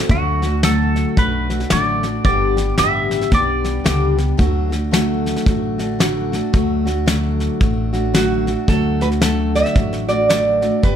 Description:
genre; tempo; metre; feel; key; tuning
honky-tonk and classic country; 112 BPM; 4/4; swing 61% on 8ths; D major; A4 = 442 Hz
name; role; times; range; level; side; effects
picked steel-string acoustic guitar; accompaniment; 0.0-11.0 s; G2 to A4; -20 LUFS; left 2 dB; none
twangy electric guitar; second line; 0.1-4.2 s; F#4 to E5; -21 LUFS; right 2 dB; phaser, tape echo
upright bass; bass; 0.1-11.0 s; G1 to D2; -21 LUFS; equal; none
soft brush drum kit; drums; 0.1-11.0 s; hi-hat, kick drum, snare drum; -20 LUFS; equal; none
lap resonator guitar; melody; 8.1-11.0 s; F#4 to E5; -19 LUFS; right 3 dB; none
room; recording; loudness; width
moderate studio reverb, RT60 0.8 s; none; -15 LUFS; side -9 dB against mid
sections
0.1-8.7 A section; 8.7-11.0 B section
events
clean electric guitar solo 0.1-8.7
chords
0.1 D; 2.2 G; 4.4 D

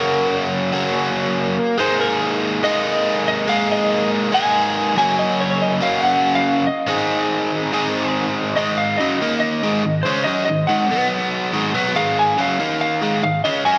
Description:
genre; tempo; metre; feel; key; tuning
rock; 142 BPM; 4/4; straight; Ab mixolydian; A4 = 442 Hz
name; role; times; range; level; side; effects
electric slide guitar; melody; 0.0-13.8 s; Bb4 to Ab5; -23 LUFS; equal; slapback echo
overdriven electric guitar; riff; 0.0-13.8 s; Gb2 to Ab4; -21 LUFS; equal; slapback echo
room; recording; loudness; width
wet lush hall reverb, RT60 2.7 s; big arena sound; -19 LUFS; mono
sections
0.0-8.6 A section; 8.6-13.8 B section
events
none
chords
0.0 Gb; 1.8 Absus2; 5.0 Gb; 6.9 Ab; 8.6 Ab5; 9.2 Eb5; 9.6 Ab5; 10.9 B5; 11.5 Ab5; 12.6 Eb5; 13.0 Ab5

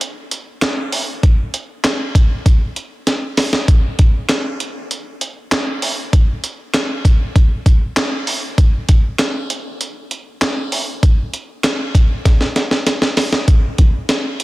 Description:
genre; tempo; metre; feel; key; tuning
pop; 98 BPM; 4/4; straight; none; none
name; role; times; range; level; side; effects
breakbeat sampler-style drum kit; drums; 0.0-14.4 s; handclaps, hi-hat, kick drum, snare drum; -14 LUFS; equal; none
room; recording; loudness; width
light reverb; dense, heavily limited modern master; -14 LUFS; side -20 dB against mid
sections
0.0-13.5 A section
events
drum fill 3.1-3.7, 12.3-13.5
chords
none

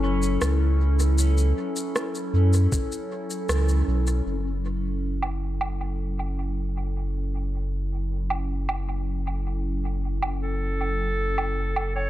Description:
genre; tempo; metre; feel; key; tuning
ambient dub; 78 BPM; 4/4; straight; F# minor; A4 = 440 Hz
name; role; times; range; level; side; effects
warbly tape-like pad; sustained chords; 0.0-12.1 s; F#3 to A4; -31 LUFS; left 1 dB; chorus, built-in reverb, phaser
pedal steel guitar; arpeggios; 0.0-2.1 s; C#4 to B4; -36 LUFS; left 3 dB; tape echo
warm sub bass; bass; 0.0-12.1 s; F#1 to F#2; -24 LUFS; equal; none
electronic shaker, rim click and woodblock; drums; 0.2-11.9 s; none; -30 LUFS; right 1 dB; overdrive, studio reverb, dub echo
electronic kick drum; drums; 2.7-2.9 s; none; -25 LUFS; equal; overdrive, studio reverb
clear clarinet; melody; 10.4-12.1 s; A4 to C#5; -28 LUFS; right 1 dB; tape echo
room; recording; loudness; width
little or no reverb; none; -23 LUFS; side -14 dB against mid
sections
0.0-4.3 A section; 4.3-12.1 B section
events
band accent 3.5-3.9; filter sweep on ambient pad 4.3-12.1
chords
0.0 F#m7

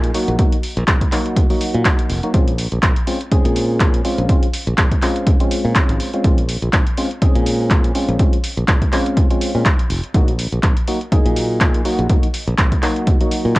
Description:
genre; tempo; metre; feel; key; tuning
deep house; 123 BPM; 4/4; swing 56% on 16ths; Bb minor; A4 = 441 Hz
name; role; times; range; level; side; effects
percussive organ stab; stabs; 0.0-13.6 s; Gb3 to Ab4; -21 LUFS; equal; analog chorus, cassette tape, sidechain pumping, tape echo
modern bright fingered electric bass; bass; 0.0-13.5 s; F1 to Bb2; -20 LUFS; equal; tube saturation, sidechain pumping
punchy analog drum machine; drums; 0.0-13.6 s; handclaps, hi-hat; -22 LUFS; equal; none
electronic kick drum; drums; 0.4-13.6 s; none; -16 LUFS; equal; none
room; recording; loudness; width
little or no reverb; home recording on cassette; -14 LUFS; side -20 dB against mid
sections
0.0-13.6 A section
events
none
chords
0.0 Ebm; 2.3 Bbm9; 10.1 Ebm

